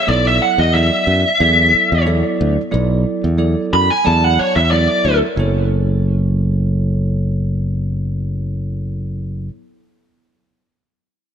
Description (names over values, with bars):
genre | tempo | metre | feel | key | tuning
electric jazz fusion | 91 BPM | 4/4 | straight | F# minor | A4 = 439 Hz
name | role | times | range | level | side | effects
bluesy overdriven lead guitar | melody | 0.0-5.2 s | C#5 to B5 | -15 LUFS | equal | distortion
bell-like tine electric piano | accompaniment | 0.1-9.5 s | F#3 to E5 | -22 LUFS | right 3 dB | wide subtle chorus
modern bright fingered electric bass | bass | 0.1-9.5 s | F#1 to F#2 | -16 LUFS | equal | none
room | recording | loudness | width
moderate lush hall reverb, RT60 2.0 s, digital ambience | bright 1980s-style digital production | -14 LUFS | side -8 dB against mid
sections
0.0-5.4 A section; 5.4-8.0 B section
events
lead electric guitar solo 0.0-5.4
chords
0.1 Bm7; 5.4 F#m7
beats
| 0.07 0.74 1.40 2.06 | 2.73 3.39 4.05 4.71 | 5.38 6.04 6.70 7.36